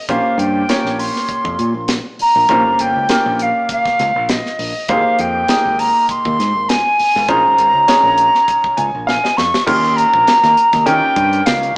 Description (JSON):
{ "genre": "electric jazz fusion", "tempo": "100 BPM", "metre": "4/4", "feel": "swing 54% on 16ths", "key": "Bb dorian", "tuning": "A4 = 440 Hz", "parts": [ { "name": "silver concert flute", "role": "melody", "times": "0.0-11.8 s", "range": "Eb5 to Db6", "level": "-13 LUFS", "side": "equal", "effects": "none" }, { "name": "bright baby grand piano", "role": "accompaniment", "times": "0.1-11.8 s", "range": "Bb3 to Ab5", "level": "-20 LUFS", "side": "equal", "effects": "none" }, { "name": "modern bright fingered electric bass", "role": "bass", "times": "0.1-11.7 s", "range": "G1 to Eb3", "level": "-22 LUFS", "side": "equal", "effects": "none" }, { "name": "tight funk drum kit", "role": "drums", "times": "0.1-11.8 s", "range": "crash cymbal, hi-hat, kick drum, snare drum", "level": "-21 LUFS", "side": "equal", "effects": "none" } ], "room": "moderate stone room reverb, RT60 1.2 s", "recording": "band playing live in one room, small speaker sound", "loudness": "-12 LUFS", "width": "side -26 dB against mid", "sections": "0.0-9.7 A section; 9.7-11.8 B section", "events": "grand piano fill 8.5-9.7; drum fill 9.1-9.7", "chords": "0.1 Bbm69; 4.9 Abmaj7; 7.3 Bbm11; 9.7 Eb7" }